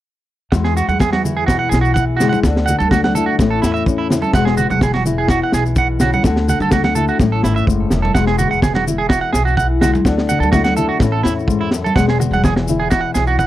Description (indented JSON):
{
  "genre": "highlife guitar band",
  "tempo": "126 BPM",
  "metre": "4/4",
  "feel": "straight",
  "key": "E mixolydian",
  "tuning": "A4 = 442 Hz",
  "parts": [
    { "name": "nylon-string guitar", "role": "accompaniment", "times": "0.5-13.5 s", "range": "E2 to F#4", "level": "-20 LUFS", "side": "left 6 dB", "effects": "none" },
    { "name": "electric guitar at the edge of break-up", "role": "arpeggios", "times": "0.5-13.5 s", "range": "E4 to F#5", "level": "-19 LUFS", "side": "right 6 dB", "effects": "tape echo" },
    { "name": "upright bass", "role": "bass", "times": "0.5-13.5 s", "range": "E1 to E2", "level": "-20 LUFS", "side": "equal", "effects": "none" },
    { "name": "crunchy breakbeat drum kit", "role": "drums", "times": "0.5-13.5 s", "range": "kick drum, snare drum", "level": "-18 LUFS", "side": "equal", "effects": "none" },
    { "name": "maracas", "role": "percussion", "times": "0.5-13.5 s", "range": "none", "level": "-32 LUFS", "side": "left 10 dB", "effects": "none" },
    { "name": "congas", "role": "percussion", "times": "0.9-12.8 s", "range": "none", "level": "-22 LUFS", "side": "right 2 dB", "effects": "none" }
  ],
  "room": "little or no reverb",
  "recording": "dry, close 1970s-style studio recording",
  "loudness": "-13 LUFS",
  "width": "side -14 dB against mid",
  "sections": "0.5-13.5 A section",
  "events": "none",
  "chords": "0.5 Eadd9; 2.4 D; 3.4 A; 4.3 Eadd9; 6.2 D; 7.2 A; 8.1 Eadd9; 10.1 D; 11.0 A; 12.0 Eadd9"
}